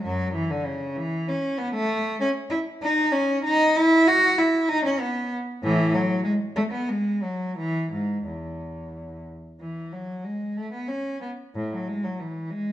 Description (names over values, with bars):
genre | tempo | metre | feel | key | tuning
classical, baroque-style suite movement for unaccompanied cello | 86-98 BPM | 3/4 | rubato | E major | A4 = 437 Hz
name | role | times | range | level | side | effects
rich cello | solo | 0.0-12.7 s | E2 to F#4 | -22 LUFS | equal | none
room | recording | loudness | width
moderate recital hall reverb, RT60 1.3 s | nothing above 11.0 kHz | -22 LUFS | side -12 dB against mid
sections
0.0-9.6 A section; 9.6-12.7 A section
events
none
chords
none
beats
| 0.04 0.67 1.28 | 1.90 2.52 3.14 | 3.75 4.38 5.00 | 5.63 6.26 6.90 | 7.59 8.27 8.95 | 9.62 10.26 10.91 | 11.57 12.21